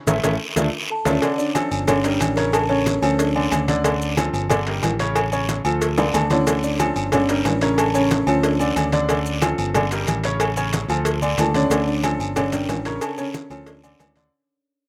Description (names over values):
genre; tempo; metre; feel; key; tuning
latin, salsa; 183 BPM; 4/4; straight; D harmonic minor; A4 = 440 Hz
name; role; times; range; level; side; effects
clear baby grand piano; accompaniment; 0.1-14.3 s; C#3 to D5; -28 LUFS; equal; none
fingered electric bass; bass; 0.1-14.3 s; G1 to D2; -27 LUFS; equal; none
congas; percussion; 0.1-14.3 s; none; -30 LUFS; equal; none
cowbell and bongos; percussion; 0.1-14.3 s; none; -29 LUFS; equal; slapback echo
guiro; percussion; 0.1-14.3 s; none; -35 LUFS; equal; none
maracas; percussion; 0.1-14.3 s; none; -36 LUFS; equal; none
timbales and agogo bells; percussion; 0.1-14.2 s; none; -29 LUFS; equal; slapback echo
buzzing kalimba; melody; 0.9-3.7, 6.1-8.9, 11.4-14.1 s; C#4 to Bb5; -26 LUFS; equal; none
room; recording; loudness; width
little or no reverb; recorded outdoors, with no room sound; -20 LUFS; mono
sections
0.0-1.2 A section; 1.2-11.7 A section; 11.7-14.3 B section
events
band accent 0.0-1.2; drum fill 0.7-1.2, 6.0-6.5; fade-out 11.7-14.3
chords
0.0 A; 0.6 Dm; 1.9 Gm; 2.5 A; 3.2 Dm; 4.5 Gm; 5.2 A; 5.8 Dm; 7.1 Gm; 7.8 A; 8.4 Dm; 9.7 Gm; 10.4 A; 11.1 Dm; 12.4 Gm; 13.0 A; 13.7 Dm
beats
0.24 0.56 0.89 | 1.22 1.55 1.88 2.21 | 2.53 2.86 3.19 3.52 | 3.85 4.17 4.50 4.83 | 5.16 5.49 5.81 6.14 | 6.47 6.80 7.12 7.45 | 7.78 8.11 8.44 8.76 | 9.09 9.42 9.74 10.07 | 10.40 10.73 11.05 11.38 | 11.71 12.04 12.36 12.69 | 13.02 13.34 13.67 14.00